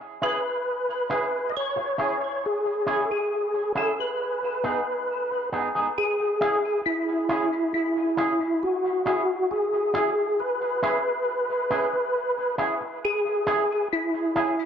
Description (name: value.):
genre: reggae.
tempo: 68 BPM.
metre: 4/4.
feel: straight.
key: C# minor.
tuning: A4 = 440 Hz.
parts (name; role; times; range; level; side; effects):
percussive tonewheel organ; melody; 0.2-14.7 s; E4 to D#5; -24 LUFS; equal; chorus vibrato, fast rotary speaker, dub echo.
electric guitar with an envelope filter; accompaniment; 0.2-14.5 s; B3 to G#4; -28 LUFS; right 1 dB; lush chorus, dub echo.
room: wet spring reverb, RT60 2.2 s.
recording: dark, warm production.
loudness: -23 LUFS.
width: side -8 dB against mid.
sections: 0.0-6.0 A section; 6.0-14.7 B section.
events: none.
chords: 0.0 C#m; 4.2 G#m; 6.0 C#m.